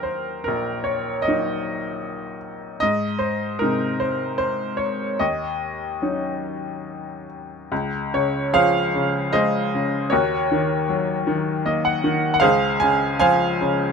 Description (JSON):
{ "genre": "classical, lyrical solo piano", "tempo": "69-79 BPM", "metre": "3/4", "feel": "rubato", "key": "Eb dorian", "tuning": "A4 = 441 Hz", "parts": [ { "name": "bright upright piano", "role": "solo", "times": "0.0-13.9 s", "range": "Bb1 to Ab5", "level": "-20 LUFS", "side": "equal", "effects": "none" } ], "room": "moderate studio reverb, RT60 0.6 s", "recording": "none", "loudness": "-19 LUFS", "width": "side -5 dB against mid", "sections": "0.0-7.7 A section; 7.7-13.9 B section", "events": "upright piano fill 11.3-12.4", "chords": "0.0 Ebm; 2.8 Ab; 5.2 Ebm7; 7.7 Dbmaj7; 10.1 Ebm7; 12.4 Dbmaj7", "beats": "| 0.48 1.26 2.04 | 2.81 3.60 4.40 | 5.20 6.02 6.87 | 7.71 8.53 9.33 | 10.11 10.88 11.64 | 12.42 13.21" }